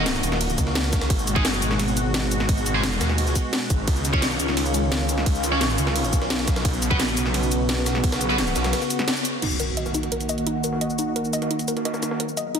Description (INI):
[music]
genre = dark technical drum and bass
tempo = 173 BPM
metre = 4/4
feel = straight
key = Eb minor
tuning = A4 = 440 Hz
[part]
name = sweeping resonant pad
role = sustained chords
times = 0.0-12.6 s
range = Cb3 to Ab4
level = -27 LUFS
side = equal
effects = wide subtle chorus, sidechain pumping
[part]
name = scooped high-gain guitar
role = stabs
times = 0.0-8.3 s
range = Ab3 to Db5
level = -29 LUFS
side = right 2 dB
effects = distortion, dub echo
[part]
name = wide detuned saw bass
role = bass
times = 0.0-8.7 s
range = Eb1 to Eb2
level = -25 LUFS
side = equal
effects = chorus, overdrive, sidechain pumping
[part]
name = breakbeat sampler-style drum kit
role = drums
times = 0.1-12.6 s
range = hi-hat, snare drum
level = -33 LUFS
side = equal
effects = high-pass filter on snare, low-pass filter on snare, high-pass filter on hats, low-pass filter on hats, high-pass filter on room, low-pass filter on room
[part]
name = drum and bass drum kit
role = drums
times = 0.1-12.6 s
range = crash cymbal, hi-hat, ride cymbal, shaker, snare drum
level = -26 LUFS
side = equal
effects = overdrive
[part]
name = electronic kick drum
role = drums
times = 0.6-8.1 s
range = none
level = -22 LUFS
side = equal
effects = overdrive
[part]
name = warbly dusty pluck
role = arpeggios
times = 9.4-12.6 s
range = Eb4 to Eb5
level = -28 LUFS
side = left 2 dB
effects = chorus, cassette tape, sidechain pumping, dub echo
[part]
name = impact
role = sound effects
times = 9.4-10.8 s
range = none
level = -32 LUFS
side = equal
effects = none
[sound]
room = moderate lush hall reverb, RT60 2.0 s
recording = dense, heavily limited modern master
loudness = -20 LUFS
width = side -7 dB against mid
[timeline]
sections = 0.0-9.4 A section; 9.4-12.6 B section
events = drop 0.0-9.4; band accent 9.1; impact 9.4-10.8; filter sweep on synth arpeggio sound 9.4-12.6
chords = 0.0 Ebm; 1.1 Abm7; 3.9 Dbadd9; 6.7 Bsus2; 9.4 Ebm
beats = 0.06 0.41 0.75 | 1.10 1.45 1.79 2.14 | 2.49 2.83 3.18 3.53 | 3.88 4.22 4.57 4.92 | 5.26 5.61 5.96 6.30 | 6.65 7.00 7.34 7.69 | 8.04 8.38 8.73 9.08 | 9.42 9.77 10.12 10.46 | 10.81 11.16 11.51 11.85 | 12.20 12.55